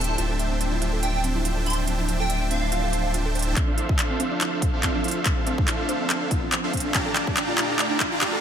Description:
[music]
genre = future bass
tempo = 142 BPM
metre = 4/4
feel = swing 55% on 16ths, half-time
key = D minor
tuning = A4 = 440 Hz
[part]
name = plucky unison lead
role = melody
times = 0.0-3.1 s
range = F5 to C6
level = -30 LUFS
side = right 2 dB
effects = lush chorus, sidechain pumping, ping-pong delay
[part]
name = airy breathy pad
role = sustained chords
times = 0.0-8.4 s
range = D2 to G4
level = -33 LUFS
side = equal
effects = chorus, sidechain pumping
[part]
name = wide unison pluck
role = arpeggios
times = 0.0-8.4 s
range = C4 to E5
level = -32 LUFS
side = right 2 dB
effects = sidechain pumping, ping-pong delay
[part]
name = supersaw chords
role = riff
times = 0.0-8.4 s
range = D4 to Bb5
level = -28 LUFS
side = right 1 dB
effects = sidechain pumping, low-pass filter, ping-pong delay
[part]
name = saturated sub bass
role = bass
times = 0.0-3.5 s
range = D1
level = -26 LUFS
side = equal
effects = sidechain pumping
[part]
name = dubstep drum kit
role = drums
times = 0.0-8.3 s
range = handclaps, hi-hat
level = -26 LUFS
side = equal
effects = studio reverb
[part]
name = electronic kick drum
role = drums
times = 3.6-8.3 s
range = none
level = -25 LUFS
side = equal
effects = studio reverb
[part]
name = riser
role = sound effects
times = 5.0-8.4 s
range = none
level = -32 LUFS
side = left 1 dB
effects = none
[sound]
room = light reverb, digital ambience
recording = high-pass filter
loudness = -21 LUFS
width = side -8 dB against mid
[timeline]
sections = 0.0-3.6 A section; 3.6-8.4 B section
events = build-up 3.6-8.4; drum fill 3.6-8.4; filter sweep on synth arpeggio sound 3.6-8.4; filter sweep on analog synth pad 3.6-8.4; filter sweep 3.6-8.4; riser 5.0-8.4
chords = 0.2 Fmaj7/D; 3.6 Dm9; 6.9 Gm9/D

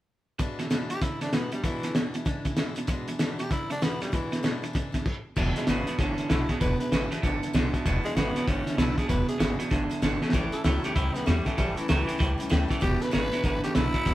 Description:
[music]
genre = rockabilly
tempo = 193 BPM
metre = 4/4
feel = swing 62% on 8ths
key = E mixolydian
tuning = A4 = 440 Hz
[part]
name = picked steel-string acoustic guitar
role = accompaniment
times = 0.4-14.1 s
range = E2 to E4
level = -36 LUFS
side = left 3 dB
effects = none
[part]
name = electric guitar at the edge of break-up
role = riff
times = 0.4-14.1 s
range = E2 to G3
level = -31 LUFS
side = right 3 dB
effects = spring reverb
[part]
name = cloth-damped thuddy drum kit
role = drums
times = 0.4-14.1 s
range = crash cymbal, hi-hat, kick drum, snare drum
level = -28 LUFS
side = equal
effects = none
[part]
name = growling tenor saxophone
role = melody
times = 0.9-14.1 s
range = E3 to B4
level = -32 LUFS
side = equal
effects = none
[part]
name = upright bass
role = bass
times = 5.4-14.1 s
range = E1 to E2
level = -29 LUFS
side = equal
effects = none
[sound]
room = light reverb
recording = band playing live in one room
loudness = -24 LUFS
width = side -15 dB against mid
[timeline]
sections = 0.4-5.4 A section; 5.4-14.1 B section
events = drum fill 10.2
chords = 0.4 E7; 10.3 A7; 12.8 E7

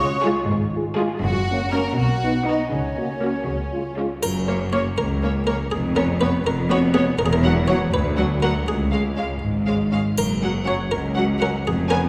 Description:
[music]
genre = cinematic, playful, whimsical film cue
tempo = 81 BPM (dotted quarters)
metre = 6/8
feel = straight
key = F# major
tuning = A4 = 440 Hz
[part]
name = bright flute section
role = second line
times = 0.0-4.0 s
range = C#5 to C#6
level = -30 LUFS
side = equal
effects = none
[part]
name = clear studio violin section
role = second line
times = 0.0-12.0 s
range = B3 to C#5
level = -34 LUFS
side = equal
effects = none
[part]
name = dark French horn section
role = sustained chords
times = 0.0-4.1 s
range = G#3 to F#4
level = -30 LUFS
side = equal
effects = none
[part]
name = rich studio cello section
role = bass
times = 0.0-12.1 s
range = C#2 to C#3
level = -26 LUFS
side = equal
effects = none
[part]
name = rich studio double bass section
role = bass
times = 0.0-12.1 s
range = E1 to D2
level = -29 LUFS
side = equal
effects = none
[part]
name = rich studio violin section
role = melody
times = 0.2-12.0 s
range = E#4 to G#5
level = -33 LUFS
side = equal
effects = none
[part]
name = rich studio viola section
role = accompaniment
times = 0.2-12.0 s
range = F#3 to E#4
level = -29 LUFS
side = equal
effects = none
[part]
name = buff-stop harpsichord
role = melody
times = 4.2-12.1 s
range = F#4 to C#5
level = -28 LUFS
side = equal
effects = none
[part]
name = triangle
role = percussion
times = 4.2-5.2, 10.2-11.1 s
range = none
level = -38 LUFS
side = equal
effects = none
[sound]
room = wet scoring stage reverb, RT60 1.9 s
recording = none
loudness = -22 LUFS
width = mono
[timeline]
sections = 0.0-4.2 A section; 4.2-12.1 B section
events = none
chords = 0.0 C#; 1.2 F#; 2.0 B; 2.7 F#/C#; 3.5 C#; 4.2 F#; 5.7 C#7/E#; 7.2 F#7/E; 7.9 Bm/D; 8.7 C#; 10.2 F#

